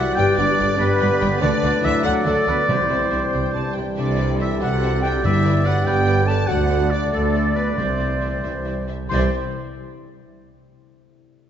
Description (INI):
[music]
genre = cinematic, heroic adventure film score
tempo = 88-97 BPM (dotted quarters)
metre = 6/8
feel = straight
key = C lydian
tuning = A4 = 439 Hz
[part]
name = rich symphonic violin section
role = melody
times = 0.0-9.4 s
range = D5 to A5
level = -38 LUFS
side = left 3 dB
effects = none
[part]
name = dark clarinet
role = second line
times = 0.0-8.8 s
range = E4 to E5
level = -29 LUFS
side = left 2 dB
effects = none
[part]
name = rich studio violin section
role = second line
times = 0.0-9.4 s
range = A4 to A5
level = -34 LUFS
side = left 3 dB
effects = none
[part]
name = warm oboe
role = second line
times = 0.0-9.3 s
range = A4 to A5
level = -29 LUFS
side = right 2 dB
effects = none
[part]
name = warm symphonic viola section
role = accompaniment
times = 0.0-9.4 s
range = A4 to D5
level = -37 LUFS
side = right 1 dB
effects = none
[part]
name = mellow French horn section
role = sustained chords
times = 0.0-9.3 s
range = A3 to A4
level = -26 LUFS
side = left 3 dB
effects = none
[part]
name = warm trombone section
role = sustained chords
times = 0.0-9.3 s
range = D3 to B3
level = -29 LUFS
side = right 3 dB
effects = none
[part]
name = concert harp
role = arpeggios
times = 0.0-10.5 s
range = G2 to C6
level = -31 LUFS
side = left 9 dB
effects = none
[part]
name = warm trumpet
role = stabs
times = 0.0-9.3 s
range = D5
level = -25 LUFS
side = right 1 dB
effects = none
[part]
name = clear symphonic double bass section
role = bass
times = 0.0-9.4 s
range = G1 to D2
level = -25 LUFS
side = right 2 dB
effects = none
[part]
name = rich symphonic cello section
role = bass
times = 0.0-9.4 s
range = C2 to D3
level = -26 LUFS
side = right 3 dB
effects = none
[part]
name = silver concert flute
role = second line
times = 0.2-9.3 s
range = A4 to C6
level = -29 LUFS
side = left 2 dB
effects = none
[part]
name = timpani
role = percussion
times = 2.7-9.3 s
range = G2 to C3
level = -29 LUFS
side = left 1 dB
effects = none
[sound]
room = wet concert hall reverb, RT60 2.1 s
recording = nothing above 7.7 kHz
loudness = -17 LUFS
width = side -9 dB against mid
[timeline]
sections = 0.0-9.1 A section; 9.1-10.5 B section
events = slowing down 5.9-9.1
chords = 0.2 G; 1.4 D; 2.7 Cadd9; 5.2 G; 6.5 D; 7.8 Cadd9